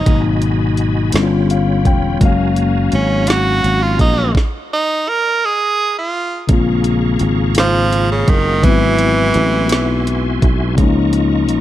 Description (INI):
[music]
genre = slow six-eight R&B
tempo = 56 BPM (dotted quarters)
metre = 6/8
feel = straight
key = Bb minor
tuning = A4 = 441 Hz
[part]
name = edgy tenor saxophone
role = melody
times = 0.0-10.4 s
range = Db3 to Bb4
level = -17 LUFS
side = right 3 dB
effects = none
[part]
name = mellow tine electric piano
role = accompaniment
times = 0.0-11.6 s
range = Cb3 to G5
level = -18 LUFS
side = left 5 dB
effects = none
[part]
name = bright tonewheel organ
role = sustained chords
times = 0.0-11.6 s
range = F4 to Db6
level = -26 LUFS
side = equal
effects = chorus vibrato, fast rotary speaker
[part]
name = sustaining fretless electric bass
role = bass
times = 0.0-11.6 s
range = E1 to Db2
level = -17 LUFS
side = equal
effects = none
[part]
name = smooth R&B drum kit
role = drums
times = 0.1-11.6 s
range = hi-hat, kick drum, snare drum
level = -15 LUFS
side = right 1 dB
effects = none
[sound]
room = digital ambience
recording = none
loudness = -12 LUFS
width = side -13 dB against mid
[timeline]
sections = 0.0-6.5 A section; 6.5-11.6 B section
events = tenor saxophone solo 0.0-6.5; tine electric piano fill 1.1-2.2; stop 4.3-6.5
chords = 0.1 Abm7; 1.1 G7#11; 2.2 Gbmaj9; 4.3 N.C.; 6.5 Bbm7; 8.6 Ab7alt; 10.8 Db69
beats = | 0.06 1.13 | 2.21 3.28 | 4.35 5.42 | 6.49 7.56 | 8.63 9.71 | 10.78